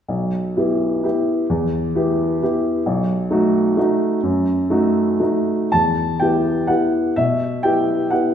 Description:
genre	classical, piano waltz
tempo	107-141 BPM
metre	3/4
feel	rubato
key	E minor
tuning	A4 = 439 Hz
part	warm upright piano	solo	0.1-8.3 s	B1 to A5	-16 LUFS	equal	none
room	wet recital hall reverb, RT60 1.3 s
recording	heard from further back in the room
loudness	-16 LUFS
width	side -8 dB against mid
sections	0.1-5.7 A section; 5.7-8.3 B section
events	none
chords	0.1 Em/B; 2.9 B7; 5.7 Em

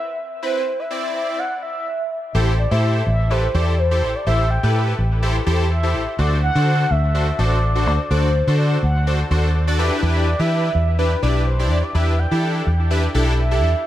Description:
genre	dance-pop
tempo	125 BPM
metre	4/4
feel	straight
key	A dorian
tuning	A4 = 440 Hz
part	mellow horn-like synth lead	melody	0.0-13.9 s	B4 to G5	-24 LUFS	right 1 dB	chorus, phaser, tape echo
part	big bright polysynth	accompaniment	0.4-13.7 s	C4 to D5	-23 LUFS	left 1 dB	chorus, tape echo
part	vintage muted fingered electric bass	bass	2.3-13.7 s	A1 to E3	-18 LUFS	equal	none
room	light reverb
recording	echo-heavy mix, high-pass filter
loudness	-17 LUFS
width	side -13 dB against mid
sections	0.0-2.3 A section; 2.3-13.9 B section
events	build-up 0.0-2.3; filter sweep 0.0-2.3; drop 2.3-13.9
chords	0.0 Cmaj7; 2.3 Am7; 6.2 D7; 9.8 Em7

